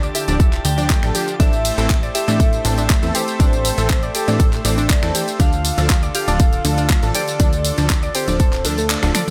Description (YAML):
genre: progressive house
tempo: 120 BPM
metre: 4/4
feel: straight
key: D minor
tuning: A4 = 441 Hz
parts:
  - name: soft octave-layered synth lead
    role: melody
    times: 0.0-9.3 s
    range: A4 to G5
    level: -28 LUFS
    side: equal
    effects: chorus, phaser, sidechain pumping, dub echo
  - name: soft synth bell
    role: second line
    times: 0.0-9.3 s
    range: A4 to G5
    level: -36 LUFS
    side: equal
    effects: none
  - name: warm analog pad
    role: sustained chords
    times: 0.0-9.3 s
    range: D3 to E5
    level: -31 LUFS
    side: equal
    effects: chorus, sidechain pumping
  - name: soft round pluck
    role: arpeggios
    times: 0.0-9.3 s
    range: A3 to D6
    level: -29 LUFS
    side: equal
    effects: chorus, sidechain pumping, dub echo
  - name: plucky analog bass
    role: bass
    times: 0.0-9.1 s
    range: D1 to A2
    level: -24 LUFS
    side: equal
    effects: sidechain pumping
  - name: pop drum kit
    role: drums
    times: 0.0-9.3 s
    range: finger snaps, handclaps, hi-hat, ride cymbal, tambourine, toms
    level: -26 LUFS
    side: equal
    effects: none
  - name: drifting glass-harmonics texture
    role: texture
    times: 0.0-9.3 s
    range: G4 to A5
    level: -39 LUFS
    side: equal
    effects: none
  - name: supersaw stab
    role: stabs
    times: 0.3-9.2 s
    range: E3 to D5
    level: -29 LUFS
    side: equal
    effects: sidechain pumping, dub echo
  - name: electronic kick drum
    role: drums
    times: 0.4-8.5 s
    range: none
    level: -18 LUFS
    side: equal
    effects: none
room: little or no reverb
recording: none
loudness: -17 LUFS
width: mono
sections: 0.0-9.3 A section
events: kick drops out 8.9-9.3; band accent 8.9; drum fill 9.1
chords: 0.0 Dm; 1.4 Am; 5.4 Dm